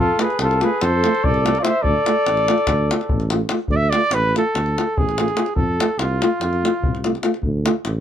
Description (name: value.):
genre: balkan folk, Balkan brass band.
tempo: 289 BPM (eighths).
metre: 9/8.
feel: straight.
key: D dorian sharp4.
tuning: A4 = 440 Hz.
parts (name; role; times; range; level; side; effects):
warm flugelhorn; melody; 0.0-3.3 s; A4 to F5; -20 LUFS; left 2 dB; plate reverb.
mellow trumpet; second line; 0.0-7.1 s; F4 to E5; -22 LUFS; right 2 dB; none.
dark tuba; bass; 0.0-8.0 s; A1 to F2; -22 LUFS; right 1 dB; none.
dark euphonium; accompaniment; 0.2-7.7 s; A3; -25 LUFS; right 7 dB; none.
mellow euphonium; accompaniment; 0.2-7.7 s; F4; -25 LUFS; left 9 dB; none.
davul; percussion; 0.2-8.0 s; none; -24 LUFS; left 2 dB; none.
room: light reverb.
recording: none.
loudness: -17 LUFS.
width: side -10 dB against mid.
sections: 0.0-3.7 A section; 3.7-8.0 B section.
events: trumpet solo 3.7-8.0.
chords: 0.0 F; 1.8 Dm; 5.6 F; 7.4 Dm.